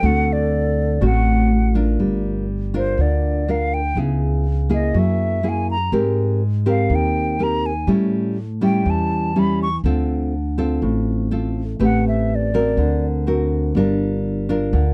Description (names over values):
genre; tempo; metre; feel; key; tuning
bossa nova; 122 BPM; 4/4; straight; unclear; A4 = 440 Hz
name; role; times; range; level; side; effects
hollow concert flute; melody; 0.0-13.1 s; C5 to C#6; -26 LUFS; equal; none
bright reedy wooden-headed alto flute; second line; 0.0-1.7 s; F#4 to A4; -29 LUFS; equal; none
nylon-string guitar; accompaniment; 0.0-14.9 s; A2 to B4; -23 LUFS; equal; none
upright bass; bass; 0.0-14.9 s; G1 to A2; -23 LUFS; equal; none
room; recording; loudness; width
little or no reverb; dry, close 1970s-style studio recording; -20 LUFS; mono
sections
0.0-2.0 A section; 2.0-14.9 B section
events
flute solo 2.0-14.9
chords
0.0 D7; 2.0 Gm7; 4.0 C#m7; 4.9 F#9; 5.9 Abmaj9; 7.9 A7; 9.8 Dm7; 11.8 Am9; 12.8 Daug7; 13.8 Gm7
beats
| 0.03 0.52 1.01 1.51 | 2.00 2.49 2.98 3.47 | 3.96 4.45 4.94 5.43 | 5.92 6.41 6.90 7.39 | 7.88 8.37 8.86 9.35 | 9.84 10.33 10.82 11.31 | 11.80 12.29 12.78 13.27 | 13.76 14.25 14.73